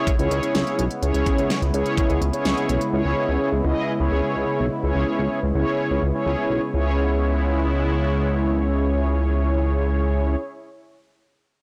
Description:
synth-pop; 126 BPM; 4/4; straight; C# minor; A4 = 440 Hz
mellow synth brass; accompaniment; 0.0-10.4 s; C#4 to D#5; -26 LUFS; equal; chorus
sweeping resonant pad; sustained chords; 0.0-10.4 s; C#3 to E4; -30 LUFS; equal; chorus
pop drum kit; drums; 0.1-2.9 s; hi-hat, kick drum, snare drum; -27 LUFS; equal
chorused synth bass; bass; 0.2-10.4 s; B1 to C#2; -24 LUFS; equal; tube saturation
moderate plate reverb, RT60 1.4 s; blown-out, overdriven recording, overdrive; -22 LUFS; mono
0.0-6.7 A section; 6.7-10.5 B section
0.0 C#m7

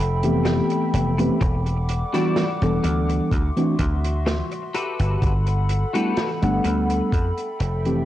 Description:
vaporwave; 63 BPM; 4/4; straight; A4 = 440 Hz
warbly tape-like pad; sustained chords; 0.0-8.1 s; G3 to D6; -29 LUFS; left 1 dB; chorus, built-in reverb, vintage 12-bit sampler grit
dry thumbed slap bass; bass; 0.0-8.1 s; E1 to F2; -22 LUFS; equal
mellow tine electric piano; accompaniment; 0.2-8.1 s; E3 to F#5; -22 LUFS; equal; lush chorus, tape echo
open jazz drum kit; drums; 0.2-8.0 s; hi-hat, snare drum; -30 LUFS; right 1 dB; vintage 12-bit sampler grit
clean electric guitar; riff; 0.4-7.6 s; E4 to D5; -30 LUFS; left 3 dB; analog chorus, vintage 12-bit sampler grit, tape echo
electronic kick drum; drums; 1.4-7.3 s; -23 LUFS; equal; vintage 12-bit sampler grit
studio reverb; dry, gritty hardware recording, transformer saturation, cassette tape; -19 LUFS; side -13 dB against mid
0.0-8.1 A section
fade-out 6.5-8.1
0.0 Fmaj9#11; 1.4 Em9; 3.3 D9; 4.7 Gmaj9; 7.1 Fmaj9#11

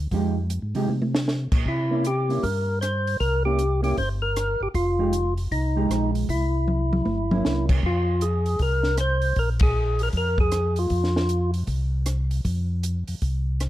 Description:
soul jazz organ trio; 156 BPM; 4/4; swing 64% on 8ths; F minor; A4 = 443 Hz
mellow tonewheel organ; bass; 0.0-13.7 s; F1 to C3; -24 LUFS; equal; slow rotary speaker
hollow-body jazz guitar; accompaniment; 0.1-7.8 s; F3 to G4; -28 LUFS; right 4 dB
compact cocktail drum kit; drums; 0.1-13.7 s; crash cymbal, hi-hat, kick drum, ride cymbal, rim click, snare drum, toms; -26 LUFS; equal
percussive tonewheel organ; melody; 1.7-11.5 s; Eb4 to C5; -25 LUFS; equal; slow rotary speaker
light reverb; dark, warm production; -21 LUFS; side -14 dB against mid
0.0-7.8 A section; 7.8-13.7 A section
drum fill 0.9-1.3, 6.7-7.4; band accent 9.6
0.1 Fm9; 1.7 C7b9; 4.7 Fm9; 6.3 C7b9; 7.8 Fm; 9.4 Bb5; 10.9 F5

